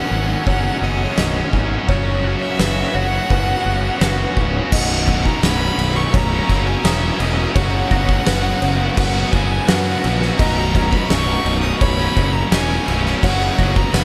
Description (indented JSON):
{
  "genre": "post-rock",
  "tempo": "85 BPM",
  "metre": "4/4",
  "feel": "straight",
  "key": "B major",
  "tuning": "A4 = 440 Hz",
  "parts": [
    { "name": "clear violin", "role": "melody", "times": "0.0-14.0 s", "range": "C#5 to D#6", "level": "-26 LUFS", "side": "equal", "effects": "delay" },
    { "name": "pedal steel guitar", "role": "sustained chords", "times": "0.0-4.7 s", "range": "D#3 to C#4", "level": "-37 LUFS", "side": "equal", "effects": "none" },
    { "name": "twangy electric guitar", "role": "arpeggios", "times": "0.0-14.0 s", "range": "B1 to F#4", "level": "-31 LUFS", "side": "equal", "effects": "none" },
    { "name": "distorted electric guitar", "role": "riff", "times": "0.0-14.0 s", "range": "B1 to F#4", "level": "-29 LUFS", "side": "equal", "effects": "none" },
    { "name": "distorted electric guitar", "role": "riff", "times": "0.0-14.0 s", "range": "B1 to F#4", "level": "-27 LUFS", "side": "equal", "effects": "distortion" },
    { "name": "fuzz fingered electric bass", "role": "bass", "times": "0.1-14.0 s", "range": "B0 to F#2", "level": "-23 LUFS", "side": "equal", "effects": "overdrive" },
    { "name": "felt-muted upright piano", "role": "arpeggios", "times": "0.5-14.0 s", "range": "B4 to D#6", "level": "-33 LUFS", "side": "equal", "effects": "delay" },
    { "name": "oversized low-tuned drum kit", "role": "drums", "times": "0.5-14.0 s", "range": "crash cymbal, kick drum, snare drum", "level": "-22 LUFS", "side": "equal", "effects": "none" }
  ],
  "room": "moderate huge ambient reverb, RT60 7.5 s",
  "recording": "dreamy mix soaked in reverb",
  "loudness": "-18 LUFS",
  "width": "mono",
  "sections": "0.0-4.7 A section; 4.7-14.0 B section",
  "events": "build-up 0.0-4.7",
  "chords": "0.0 Badd9; 1.9 F#sus4; 4.7 Badd9; 7.6 F#sus4; 10.4 Badd9; 13.2 F#sus4",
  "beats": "0.47 1.18 | 1.89 2.60 3.31 4.01 | 4.72 5.43 6.14 6.85 | 7.56 8.27 8.98 9.69 | 10.40 11.11 11.81 12.52 | 13.23 13.94"
}